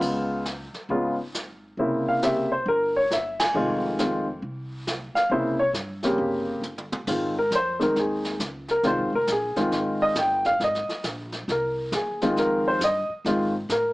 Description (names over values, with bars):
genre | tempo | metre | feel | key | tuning
jazz piano trio | 136 BPM | 4/4 | swing 65% on 8ths | F minor | A4 = 440 Hz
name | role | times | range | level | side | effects
warm baby grand piano | melody | 0.0-13.9 s | Db3 to Ab5 | -22 LUFS | equal | none
upright bass | bass | 0.0-13.9 s | F1 to A2 | -36 LUFS | equal | none
jazz brush drum kit | drums | 0.0-13.9 s | brushed snare drum, crash cymbal, hi-hat, kick drum, ride cymbal, snare drum, toms | -32 LUFS | equal | none
room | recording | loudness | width
light reverb | small speaker sound | -22 LUFS | side -20 dB against mid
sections
0.0-7.1 A section; 7.1-13.9 B section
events
band accent 3.3; drum fill 6.6-7.1; grand piano solo 7.1-13.9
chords
0.0 Db7; 1.8 C7b9; 3.5 Fm7; 5.3 C7(no3); 7.1 Fm7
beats
| 0.02 0.46 0.90 1.34 | 1.78 2.22 2.66 3.10 | 3.54 3.98 4.42 4.87 | 5.31 5.75 6.19 6.63 | 7.07 7.51 7.95 8.40 | 8.84 9.28 9.72 10.16 | 10.61 11.05 11.49 11.93 | 12.37 12.81 13.25 13.69